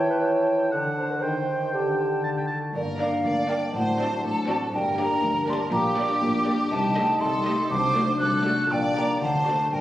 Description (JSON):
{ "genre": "cinematic, playful, whimsical film cue", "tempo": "120 BPM", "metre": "2/4", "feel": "straight", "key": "G minor", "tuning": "A4 = 442 Hz", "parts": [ { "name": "clear oboe", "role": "second line", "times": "0.0-2.6 s", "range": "F#5 to A5", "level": "-30 LUFS", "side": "equal", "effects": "none" }, { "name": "dark clarinet", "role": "second line", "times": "0.0-2.2 s", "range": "G4 to C#5", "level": "-25 LUFS", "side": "right 1 dB", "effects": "none" }, { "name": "hollow concert flute", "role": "second line", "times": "0.0-9.8 s", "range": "D5 to F#6", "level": "-27 LUFS", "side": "equal", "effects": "none" }, { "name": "warm bassoon", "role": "accompaniment", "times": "0.0-2.5 s", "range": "D3 to E3", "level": "-28 LUFS", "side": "right 1 dB", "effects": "none" }, { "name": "concert harp", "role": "arpeggios", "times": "0.0-9.8 s", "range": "G2 to C5", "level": "-30 LUFS", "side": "left 2 dB", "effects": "none" }, { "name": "warm French horn section", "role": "sustained chords", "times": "2.7-9.8 s", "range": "F#3 to Eb4", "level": "-32 LUFS", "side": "left 1 dB", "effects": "none" }, { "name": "rich studio cello section", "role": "bass", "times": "2.7-9.8 s", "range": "D2 to D3", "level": "-32 LUFS", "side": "equal", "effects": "none" }, { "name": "rich studio double bass section", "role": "bass", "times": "2.7-9.8 s", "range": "G1 to D2", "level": "-34 LUFS", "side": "equal", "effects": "none" }, { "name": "xylophone with soft rubber mallets", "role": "melody", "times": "2.8-9.8 s", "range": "Bb4 to D6", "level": "-32 LUFS", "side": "equal", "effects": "none" }, { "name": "rich studio violin section", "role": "second line", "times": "2.8-9.8 s", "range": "G4 to D5", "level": "-32 LUFS", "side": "right 1 dB", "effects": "none" }, { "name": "rich studio violin section", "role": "melody", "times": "3.0-9.7 s", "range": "D5 to Eb5", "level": "-36 LUFS", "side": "equal", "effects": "none" }, { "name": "rich studio viola section", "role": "accompaniment", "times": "3.0-9.7 s", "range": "A3 to Bb4", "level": "-31 LUFS", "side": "equal", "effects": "none" } ], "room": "wet stone room reverb, RT60 1.0 s", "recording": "recorded on a phone in the room, club reverb, compression", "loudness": "-22 LUFS", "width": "side -13 dB against mid", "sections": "0.0-2.7 A section; 2.7-9.8 B section", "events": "none", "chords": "0.0 A7/E; 0.7 D; 1.2 Cm/Eb; 1.7 Dsus4; 2.2 D; 2.7 Gm; 3.7 D7/A; 4.7 Gm; 5.7 Gm/Bb; 6.7 Am7b5/C; 7.7 D7/C; 8.7 Gm/Bb; 9.2 D", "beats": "0.23 | 0.72 1.23 | 1.73 2.24 | 2.75 3.25 | 3.75 4.25 | 4.74 5.24 | 5.73 6.22 | 6.72 7.22 | 7.71 8.21 | 8.71 9.22 | 9.73" }